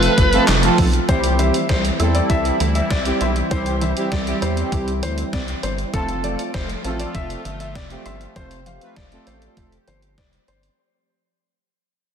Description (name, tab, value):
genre	synth-pop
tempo	99 BPM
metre	4/4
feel	straight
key	C major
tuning	A4 = 440 Hz
part	analog synth brass	accompaniment	0.0-9.8 s	F3 to C5	-23 LUFS	right 2 dB	chorus
part	sweeping resonant pad	sustained chords	0.0-10.8 s	E3 to G4	-28 LUFS	equal	chorus
part	wide unison pluck	arpeggios	0.0-10.7 s	E3 to C6	-30 LUFS	right 3 dB	none
part	rubbery square bass	bass	0.0-10.7 s	F1 to E2	-23 LUFS	equal	none
part	gated 80s digital drum machine	drums	0.0-10.8 s	handclaps, hi-hat, kick drum, snare drum	-23 LUFS	equal	gated reverb, gated reverb snare
part	warm concert grand piano	second line	1.1-10.6 s	A4 to F5	-27 LUFS	left 3 dB	ping-pong delay
room	moderate lush hall reverb, RT60 2.2 s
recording	dense, heavily limited modern master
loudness	-17 LUFS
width	side -8 dB against mid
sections	0.0-1.1 A section; 1.1-10.8 B section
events	fade-out 1.1-10.8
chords	0.0 F; 1.1 C; 5.9 F